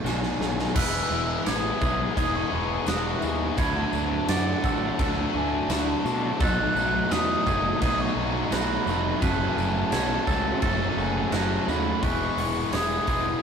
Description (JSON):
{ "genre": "rock, shoegaze and dream pop", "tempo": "85 BPM", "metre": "4/4", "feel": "straight", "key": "E major", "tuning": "A4 = 439 Hz", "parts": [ { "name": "biting overdriven guitar", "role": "riff", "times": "0.0-13.4 s", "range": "F#2 to A4", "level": "-30 LUFS", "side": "left 3 dB", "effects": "none" }, { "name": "overdriven semi-hollow guitar", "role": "riff", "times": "0.0-0.8, 6.4-13.4 s", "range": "E2 to F#4", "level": "-30 LUFS", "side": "right 5 dB", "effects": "none" }, { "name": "fuzz picked electric bass", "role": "bass", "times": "0.0-13.3 s", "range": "E1 to B2", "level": "-30 LUFS", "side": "equal", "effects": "overdrive" }, { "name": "concert flute", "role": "melody", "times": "0.1-13.4 s", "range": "F#5 to F#6", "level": "-30 LUFS", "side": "left 1 dB", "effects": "none" }, { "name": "twangy electric guitar", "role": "arpeggios", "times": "0.1-13.4 s", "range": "F#4 to D5", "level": "-33 LUFS", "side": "right 5 dB", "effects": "none" }, { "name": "huge arena drum kit", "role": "drums", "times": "0.1-13.2 s", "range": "crash cymbal, hi-hat, kick drum, snare drum", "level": "-29 LUFS", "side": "equal", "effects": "none" }, { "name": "tambourine", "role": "percussion", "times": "0.1-12.9 s", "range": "none", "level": "-44 LUFS", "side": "left 5 dB", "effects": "none" }, { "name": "overdriven electric guitar", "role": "riff", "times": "0.8-13.4 s", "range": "F#2 to G#4", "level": "-32 LUFS", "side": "left 1 dB", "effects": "none" } ], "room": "wet small room ambience, RT60 0.5 s", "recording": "rough rehearsal-room recording, tube saturation", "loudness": "-22 LUFS", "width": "side -7 dB against mid", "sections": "0.8-12.0 A section; 12.0-13.4 B section", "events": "drum fill 0.1-0.8", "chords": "0.0 B7; 0.8 Emaj7; 3.6 Dmaj7; 6.4 B7; 9.2 F#m; 12.0 Emaj7" }